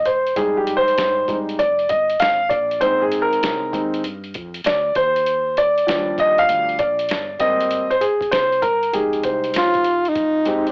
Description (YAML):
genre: hip hop, jazz-hop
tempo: 98 BPM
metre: 4/4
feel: swing 66% on 16ths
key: F dorian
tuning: A4 = 438 Hz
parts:
  - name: dark grand piano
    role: accompaniment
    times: 0.0-10.7 s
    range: F3 to F5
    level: -16 LUFS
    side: equal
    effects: cassette tape
  - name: woody fretless electric bass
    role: bass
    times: 0.0-10.7 s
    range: E1 to G2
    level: -37 LUFS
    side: equal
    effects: transformer saturation
  - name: boom bap sampler-style drum kit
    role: drums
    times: 0.1-10.7 s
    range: hi-hat, kick drum, snare drum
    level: -28 LUFS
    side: equal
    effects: cassette tape
  - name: breathy tenor saxophone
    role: melody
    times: 9.6-10.7 s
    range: Eb4 to F4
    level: -16 LUFS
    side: equal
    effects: cassette tape
room: light reverb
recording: home recording on cassette, AM radio sound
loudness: -16 LUFS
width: side -40 dB against mid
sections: 0.0-10.2 A section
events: grand piano solo 0.0-10.2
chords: 0.4 Fm9; 2.5 Bb9sus4; 5.0 Ebmaj9; 7.4 Abmaj7; 8.9 Fm9